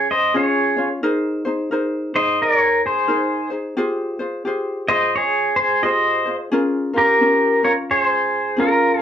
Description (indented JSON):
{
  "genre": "Hawaiian",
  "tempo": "88 BPM",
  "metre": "4/4",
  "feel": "swing 62% on 8ths",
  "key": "unclear",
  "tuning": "A4 = 440 Hz",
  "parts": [
    { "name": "pedal steel guitar", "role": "melody", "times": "0.0-9.0 s", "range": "F4 to Eb5", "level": "-16 LUFS", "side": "equal", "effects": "none" },
    { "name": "ukulele", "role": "accompaniment", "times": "0.0-9.0 s", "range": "Db4 to Db5", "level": "-22 LUFS", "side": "left 1 dB", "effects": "none" }
  ],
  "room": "moderate studio ambience, RT60 0.5 s",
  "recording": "band playing live in one room",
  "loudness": "-16 LUFS",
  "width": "side -9 dB against mid",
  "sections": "0.0-9.0 A section",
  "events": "none",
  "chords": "0.0 Db; 1.0 Abadd9; 3.8 Fmadd9; 6.5 Db6",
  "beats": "0.35 | 1.03 1.72 2.40 3.09 | 3.77 4.46 5.14 5.83 | 6.51 7.20 7.88 8.57"
}